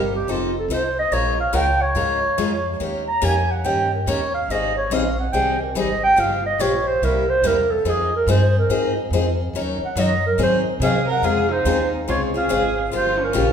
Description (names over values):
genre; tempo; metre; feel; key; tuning
acoustic string swing (jazz manouche); 142 BPM; 4/4; swing 64% on 8ths; unclear; A4 = 440 Hz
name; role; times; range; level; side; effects
breathy clarinet; melody; 0.0-13.5 s; F4 to Bb5; -20 LUFS; right 2 dB; none
upright bass; bass; 0.0-13.5 s; F1 to C3; -24 LUFS; equal; none
picked steel-string acoustic guitar; accompaniment; 0.3-13.5 s; C3 to Bb4; -23 LUFS; left 3 dB; none
warm violin; second line; 10.8-13.5 s; Db4 to Bb4; -26 LUFS; right 4 dB; none
room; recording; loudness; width
wet recital hall reverb, RT60 1.5 s; recorded in a church or concert hall; -18 LUFS; side -7 dB against mid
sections
0.0-11.2 A section; 11.2-13.5 B section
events
clarinet solo 0.0-11.2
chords
0.3 F7; 1.1 Bbm7; 2.8 Eb7; 4.5 Abmaj7; 6.2 Gm7b5; 7.0 C7; 7.9 Fm7; 9.5 Ebm7; 10.4 Ab7; 11.2 Dbmaj9; 12.9 Gm7b5